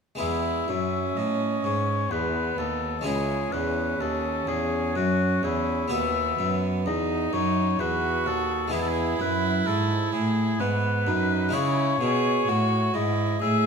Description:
classical, baroque-style sonata movement with continuo; 64 BPM; 3/4; straight; E major; A4 = 440 Hz
warm oboe; melody; 0.2-13.7 s; E4 to E5; -28 LUFS; left 7 dB
warm violin; second line; 0.2-13.7 s; B3 to G#4; -28 LUFS; right 8 dB
harpsichord; accompaniment; 0.2-13.7 s; C#2 to G#4; -30 LUFS; left 4 dB
rich cello; bass; 0.2-13.7 s; C#2 to C#3; -28 LUFS; right 2 dB
moderate recital hall reverb, RT60 1.4 s; -23 LUFS; side -5 dB against mid
0.2-13.7 A section
0.2 E; 3.1 C#m; 5.9 B/D#; 8.7 E; 11.5 C#m

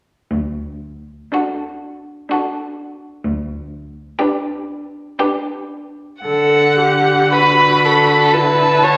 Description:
classical, slow romantic movement for string quartet; 53-65 BPM; 3/4; rubato; D major; A4 = 439 Hz
rich cello; bass; 0.3-9.0 s; D2 to D3; -23 LUFS; equal
rich violin; melody; 1.3-9.0 s; A4 to B5; -19 LUFS; equal
rich violin; second line; 1.3-9.0 s; F#4 to C#5; -19 LUFS; equal
rich viola; accompaniment; 1.3-9.0 s; D4 to A4; -22 LUFS; equal
wet recital hall reverb, RT60 1.4 s; -16 LUFS; mono
0.3-6.3 A section; 6.3-9.0 B section
0.3 D

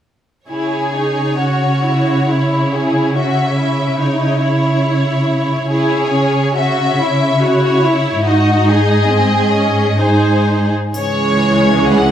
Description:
classical, slow romantic movement for symphony orchestra; 69 BPM; 3/4; uneven beats, rubato; C# minor; A4 = 440 Hz
clear symphonic violin section; melody; 0.5-12.1 s; B#4 to F#5; -21 LUFS; left 1 dB
warm symphonic violin section; second line; 0.5-12.1 s; C#4 to G#4; -18 LUFS; left 1 dB
clear symphonic viola section; accompaniment; 0.5-12.1 s; E3 to F#4; -18 LUFS; right 1 dB
rich symphonic cello section; bass; 0.5-12.1 s; C#2 to C#3; -16 LUFS; right 1 dB
triangle; percussion; 10.9-12.1 s; -36 LUFS; left 2 dB
wet stone room reverb, RT60 1.0 s; -12 LUFS; side -10 dB against mid
0.5-11.0 A section; 11.0-12.1 B section
0.5 C#m; 8.3 G#; 11.0 C#m

